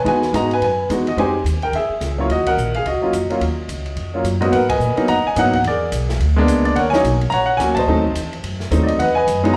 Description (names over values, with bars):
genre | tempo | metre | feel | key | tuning
jazz piano trio | 215 BPM | 4/4 | swing 60% on 8ths | Eb minor, G# minor from 4.5 s | A4 = 440 Hz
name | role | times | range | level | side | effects
clear baby grand piano | melody | 0.0-9.6 s | Ab2 to Bb5 | -19 LUFS | equal | slapback echo
upright bass | bass | 0.0-9.5 s | Bb1 to A#2 | -24 LUFS | equal | none
open jazz drum kit | drums | 0.1-9.5 s | hi-hat, kick drum, ride cymbal, snare drum | -34 LUFS | equal | none
room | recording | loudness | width
light reverb, studio ambience | live gig heard through the venue's PA, club reverb | -18 LUFS | mono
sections
0.0-4.5 A section; 4.5-9.6 B section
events
band accent 2.4, 4.7, 7.7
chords
0.1 Emaj9; 1.2 Fm9; 1.7 E; 2.3 Ebm9; 4.5 G#m9; 5.6 E7#11; 6.8 D#m7; 7.9 D#dim7; 9.0 Emaj9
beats
| 0.05 0.33 0.61 0.89 | 1.17 1.45 1.73 2.01 | 2.29 2.57 2.85 3.13 | 3.41 3.69 3.97 4.25 | 4.53 4.81 5.09 5.37 | 5.64 5.92 6.20 6.48 | 6.76 7.04 7.32 7.60 | 7.88 8.16 8.44 8.71 | 8.99 9.27 9.55